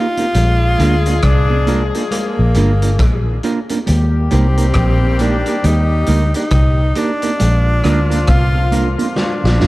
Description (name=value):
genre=roots reggae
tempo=68 BPM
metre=4/4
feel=swing 61% on 16ths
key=Eb major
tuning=A4 = 440 Hz
part: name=clear tenor saxophone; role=melody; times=0.0-9.7 s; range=Bb3 to F4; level=-20 LUFS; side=equal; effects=tape echo
part: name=mellow electric guitar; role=accompaniment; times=0.0-9.7 s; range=Bb3 to Bb4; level=-22 LUFS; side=right 4 dB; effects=tape echo
part: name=crunchy breakbeat drum kit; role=drums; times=0.2-9.7 s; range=hi-hat, kick drum, rim click, snare drum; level=-21 LUFS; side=equal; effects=none
part: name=congas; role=percussion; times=0.2-9.7 s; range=none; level=-26 LUFS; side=right 2 dB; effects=none
part: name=vintage muted fingered electric bass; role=bass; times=0.3-9.7 s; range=G1 to Eb2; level=-14 LUFS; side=equal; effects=none
part: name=warm horn section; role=second line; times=0.4-9.7 s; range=D3 to Ab4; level=-24 LUFS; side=left 5 dB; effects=tape echo
room=light reverb, small room ambience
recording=dark, warm production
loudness=-12 LUFS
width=side -18 dB against mid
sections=0.0-9.7 A section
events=drum fill 9.2-9.7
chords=0.3 Bb; 3.9 Eb; 7.4 Bb